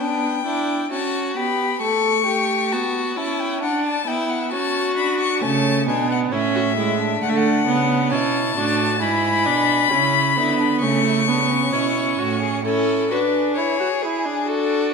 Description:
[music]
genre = classical, baroque-style fugue for string quartet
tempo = 66 BPM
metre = 4/4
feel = straight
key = unclear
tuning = A4 = 441 Hz
[part]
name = warm violin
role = melody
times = 0.0-14.9 s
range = G#4 to C#6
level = -22 LUFS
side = left 7 dB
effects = none
[part]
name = warm violin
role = second line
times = 0.0-14.9 s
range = C#4 to A4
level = -24 LUFS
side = left 2 dB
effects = none
[part]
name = rich viola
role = accompaniment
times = 0.0-14.9 s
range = G#3 to F#4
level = -23 LUFS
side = right 5 dB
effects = none
[part]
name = rich cello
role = bass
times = 5.4-12.6 s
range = G#2 to D3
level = -25 LUFS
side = right 6 dB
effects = none
[sound]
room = wet scoring stage reverb, RT60 1.7 s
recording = none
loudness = -18 LUFS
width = side -5 dB against mid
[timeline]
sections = 0.0-12.6 A section; 12.6-14.9 B section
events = none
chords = 0.0 Em7/B; 1.8 A7; 3.6 D; 5.4 A; 7.2 Bm7; 9.0 E7/G#; 10.8 A/C#

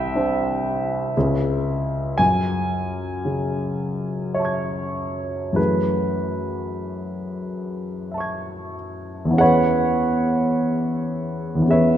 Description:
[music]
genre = classical, impressionist solo piano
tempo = 45-60 BPM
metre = 3/4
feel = rubato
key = unclear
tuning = A4 = 437 Hz
[part]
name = warm grand piano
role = solo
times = 0.0-12.0 s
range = C2 to G#6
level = -20 LUFS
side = equal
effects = none
[sound]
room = moderate concert hall reverb, RT60 1.8 s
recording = minimal, uncompressed stereo recording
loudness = -20 LUFS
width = side -10 dB against mid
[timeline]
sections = 0.0-9.4 A section; 9.4-12.0 A section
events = none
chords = 0.0 Cadd9; 1.2 C#m; 2.2 F#m9; 9.4 E6

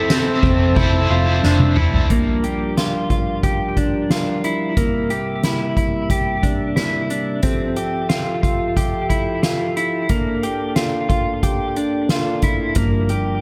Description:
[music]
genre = dream pop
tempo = 90 BPM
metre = 4/4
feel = straight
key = unclear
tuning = A4 = 438 Hz
[part]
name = mellow electric guitar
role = melody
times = 0.0-1.4 s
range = A4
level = -30 LUFS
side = equal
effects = subtle chorus, tape echo
[part]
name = cranked stack guitar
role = accompaniment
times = 0.0-2.1 s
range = F3 to A4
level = -27 LUFS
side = equal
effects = overdrive, harmonic tremolo, subtle chorus, tape echo
[part]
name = mellow tonewheel organ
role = sustained chords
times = 0.0-13.4 s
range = C3 to E6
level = -27 LUFS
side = equal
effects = slow rotary speaker
[part]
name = clean electric guitar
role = arpeggios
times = 0.0-13.4 s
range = Bb3 to G4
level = -24 LUFS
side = equal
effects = lush chorus, tape echo
[part]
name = vintage muted picked electric bass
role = bass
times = 0.0-2.1, 12.8-13.4 s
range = F1 to G1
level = -21 LUFS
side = equal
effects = none
[part]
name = soft-mallet drum kit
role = drums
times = 0.1-13.2 s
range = hi-hat, kick drum, ride cymbal, snare drum, tambourine, toms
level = -23 LUFS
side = equal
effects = none
[sound]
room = moderate spring reverb, RT60 2.6 s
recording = echo-heavy mix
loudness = -19 LUFS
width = mono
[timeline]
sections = 0.0-2.1 A section; 2.1-13.4 B section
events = drum fill 1.4-2.1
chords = 0.0 Fmaj7; 2.1 Gm7; 4.8 C7; 7.4 Fmaj9; 10.1 Bbmaj7; 12.8 Gm7

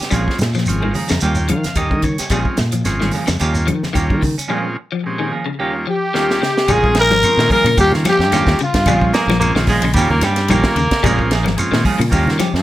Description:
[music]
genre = afrobeat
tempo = 110 BPM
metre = 4/4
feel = swing 55% on 16ths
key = Bb dorian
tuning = A4 = 440 Hz
[part]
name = clean electric guitar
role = arpeggios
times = 0.0-12.6 s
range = Db3 to G3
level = -23 LUFS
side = left 6 dB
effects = analog chorus, slapback echo
[part]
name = semi-hollow electric guitar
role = stabs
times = 0.0-12.6 s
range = F3 to Ab4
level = -23 LUFS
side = right 4 dB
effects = none
[part]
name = fingered electric bass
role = bass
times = 0.0-12.6 s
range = Ab1 to Eb3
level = -19 LUFS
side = equal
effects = none
[part]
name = tight funk drum kit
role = drums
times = 0.0-12.6 s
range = hi-hat, kick drum, ride cymbal, snare drum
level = -21 LUFS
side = equal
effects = none
[part]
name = combo organ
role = accompaniment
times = 0.1-12.4 s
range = Eb2 to Bb5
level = -22 LUFS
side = right 1 dB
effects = none
[part]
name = claves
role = percussion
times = 0.1-12.5 s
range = none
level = -28 LUFS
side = left 2 dB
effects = none
[part]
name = shekere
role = percussion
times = 0.1-12.5 s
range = none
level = -26 LUFS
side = right 2 dB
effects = none
[part]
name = congas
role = percussion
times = 0.4-12.5 s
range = none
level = -24 LUFS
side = right 1 dB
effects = none
[part]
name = breathy alto saxophone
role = melody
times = 5.9-9.1 s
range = F4 to Bb4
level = -16 LUFS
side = left 2 dB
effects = none
[part]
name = growling trumpet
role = second line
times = 5.9-9.1 s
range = F4 to Bb4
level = -20 LUFS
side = right 3 dB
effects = none
[part]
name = raspy baritone saxophone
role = second line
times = 9.1-11.6 s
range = G3 to Bb3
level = -20 LUFS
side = right 2 dB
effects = slapback echo
[sound]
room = light reverb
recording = none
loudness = -14 LUFS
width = side -14 dB against mid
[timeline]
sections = 0.0-6.7 A section; 6.7-12.6 B section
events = transistor combo organ fill 0.7-2.3; drum fill 6.1-6.7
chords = 0.1 Bbm7; 1.2 Eb7; 2.3 Bbm7; 3.4 Eb7; 4.5 Bbm7; 5.6 Eb7; 6.7 Bbm7; 7.8 Eb7; 8.9 Bbm7; 10.0 Eb7; 11.0 Bbm7

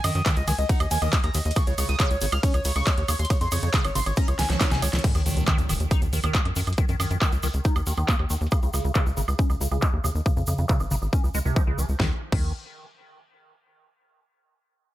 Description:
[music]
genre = psychedelic trance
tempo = 138 BPM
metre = 4/4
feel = straight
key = unclear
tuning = A4 = 440 Hz
[part]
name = overdriven synth lead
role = melody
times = 0.0-5.0 s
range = Db5 to F6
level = -30 LUFS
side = equal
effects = distortion, phaser, cassette tape, sidechain pumping, dub echo
[part]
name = liquid acid bass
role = riff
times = 0.0-12.5 s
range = C3 to Eb4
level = -32 LUFS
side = right 1 dB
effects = phaser, auto-pan, vintage 12-bit sampler grit, sidechain pumping, dub echo
[part]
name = tight sequencer bass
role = bass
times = 0.0-12.5 s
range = Eb1 to Gb2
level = -25 LUFS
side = equal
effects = none
[part]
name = big-room dance drum kit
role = drums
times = 0.0-12.4 s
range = crash cymbal, handclaps, hi-hat, ride cymbal, snare drum, woodblock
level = -29 LUFS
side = right 1 dB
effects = overdrive, low-pass filter on hats, low-pass filter on cymbals, low-pass filter on perc, low-pass filter on snare
[part]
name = egg shaker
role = percussion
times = 0.0-12.0 s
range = none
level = -37 LUFS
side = equal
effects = none
[part]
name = electronic kick drum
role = drums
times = 0.3-12.4 s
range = none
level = -23 LUFS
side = equal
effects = overdrive
[part]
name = impact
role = sound effects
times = 5.0-6.8 s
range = none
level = -32 LUFS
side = equal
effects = none
[sound]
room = digital ambience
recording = none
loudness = -21 LUFS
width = side -15 dB against mid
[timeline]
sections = 0.0-5.0 A section; 5.0-12.0 B section; 12.0-13.7 C section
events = drop 0.0-5.0; drum fill 4.4-5.0; impact 5.0-6.8; filter sweep on drum 5.0-12.0; filter sweep on acid bass 5.0-12.0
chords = 0.0 Eb5; 1.6 Db5; 5.0 Eb5; 8.5 Db5; 12.0 N.C.

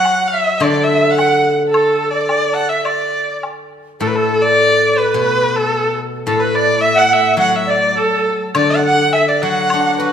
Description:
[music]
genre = chinese traditional, Chinese chamber ensemble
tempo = 106 BPM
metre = 2/4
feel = rubato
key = D gong mode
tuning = A4 = 440 Hz
[part]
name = clear erhu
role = melody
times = 0.0-10.1 s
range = A4 to A5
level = -16 LUFS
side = left 2 dB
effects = none
[part]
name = bright tenor recorder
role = second line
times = 0.0-10.1 s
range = A4 to F#5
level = -18 LUFS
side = right 5 dB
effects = none
[part]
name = steel-string zither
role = accompaniment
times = 0.0-10.1 s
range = A2 to F#4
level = -18 LUFS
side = left 1 dB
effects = none
[part]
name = woodblock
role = percussion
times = 0.0-3.6, 8.5-9.8 s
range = none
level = -25 LUFS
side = left 2 dB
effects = none
[sound]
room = moderate scoring stage reverb, RT60 1.6 s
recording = minimal, uncompressed stereo recording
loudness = -12 LUFS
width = side -8 dB against mid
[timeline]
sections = 0.0-4.0 A section; 4.0-10.1 B section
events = none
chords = none

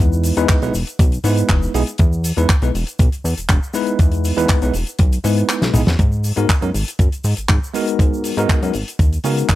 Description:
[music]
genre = nu-disco, nu disco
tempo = 120 BPM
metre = 4/4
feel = straight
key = unclear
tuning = A4 = 442 Hz
[part]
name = bell-like tine electric piano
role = accompaniment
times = 0.0-9.6 s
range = G#3 to B4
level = -20 LUFS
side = equal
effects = medium stereo tremolo, vintage 12-bit sampler grit, sidechain pumping, slapback echo
[part]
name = chorused synth bass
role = bass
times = 0.0-9.6 s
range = E1 to C#3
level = -19 LUFS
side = equal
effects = none
[part]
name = damped 70s drum kit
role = drums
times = 0.0-9.6 s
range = handclaps, hi-hat, shaker, snare drum, toms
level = -23 LUFS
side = equal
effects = none
[part]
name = electronic kick drum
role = drums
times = 0.5-9.6 s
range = none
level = -15 LUFS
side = equal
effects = none
[sound]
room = little or no reverb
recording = none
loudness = -15 LUFS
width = side -15 dB against mid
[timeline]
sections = 0.0-9.6 A section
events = kick drops out 5.5-6.0; drum fill 5.6-6.0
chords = 0.0 Emaj7; 6.0 G#m9

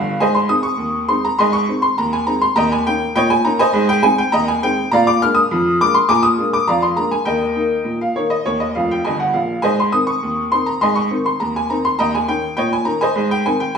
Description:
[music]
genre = ragtime piano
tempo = 102 BPM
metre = 2/4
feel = straight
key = Ab major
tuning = A4 = 439 Hz
[part]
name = clear upright piano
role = solo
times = 0.0-13.8 s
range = F1 to F6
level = -14 LUFS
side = equal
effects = none
[sound]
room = wet large studio reverb, RT60 1.3 s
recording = band playing live in one room, small room ambience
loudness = -14 LUFS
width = side -6 dB against mid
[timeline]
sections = 0.2-13.8 A section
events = upright piano fill 0.0, 8.7-9.6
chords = 0.2 Ab; 2.6 Eb7; 3.7 Ab; 4.9 Bb7; 7.3 Eb; 9.6 Ab; 12.0 Eb7; 13.2 Ab

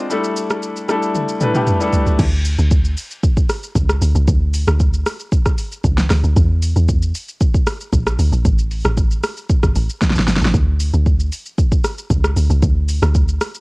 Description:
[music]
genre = amapiano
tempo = 115 BPM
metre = 4/4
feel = straight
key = unclear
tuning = A4 = 440 Hz
[part]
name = clear concert grand piano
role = accompaniment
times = 0.0-2.2 s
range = G3 to C5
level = -18 LUFS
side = left 2 dB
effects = cassette tape
[part]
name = deep house drum kit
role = drums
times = 0.1-13.6 s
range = crash cymbal, hi-hat, kick drum, rim click, shaker, snare drum, toms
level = -17 LUFS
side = equal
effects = none
[part]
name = deep log drum bass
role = bass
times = 2.2-13.4 s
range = G1 to E2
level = -15 LUFS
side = equal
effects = none
[sound]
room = little or no reverb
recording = home recording on cassette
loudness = -14 LUFS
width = side -26 dB against mid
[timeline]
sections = 0.0-2.2 A section; 2.2-13.6 B section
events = drum fill 1.1-2.2, 10.0-10.5; drop 2.2-13.6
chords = 0.1 A7sus4; 2.2 N.C.; 7.9 Bb; 8.5 N.C.

